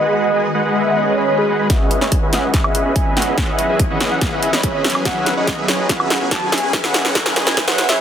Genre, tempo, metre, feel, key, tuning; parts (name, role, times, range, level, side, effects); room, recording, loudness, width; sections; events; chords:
future bass; 143 BPM; 4/4; half-time; C# minor; A4 = 437 Hz
warm velvety synth lead; melody; 0.0-8.0 s; G#4 to A5; -22 LUFS; equal; chorus, sidechain pumping, dub echo
shimmering ambient pad; sustained chords; 0.0-8.0 s; C#3 to F#4; -27 LUFS; right 1 dB; chorus, built-in reverb, phaser, sidechain pumping
supersaw chords; riff; 0.0-8.0 s; F#3 to B5; -19 LUFS; equal; cassette tape, sidechain pumping, low-pass filter
swell and riser; sound effects; 1.0-8.0 s; -28 LUFS; right 1 dB
wide detuned saw bass; bass; 1.7-8.0 s; F#1 to C#2; -30 LUFS; equal
big-room dance drum kit; drums; 1.7-8.0 s; hi-hat, snare drum, woodblock; -19 LUFS; equal
electronic kick drum; drums; 1.7-7.7 s; -20 LUFS; equal
light reverb; dense, heavily limited modern master, high-pass filter, low-pass filter; -14 LUFS; side -9 dB against mid
0.0-1.7 A section; 1.7-8.0 B section
swell 1.0-1.7; build-up 1.7-8.0; drum fill 1.7-8.0; filter sweep on supersaw synth 1.7-8.0; filter sweep 1.7-8.0
0.0 G#m7; 1.7 C#m11; 4.8 F#7sus4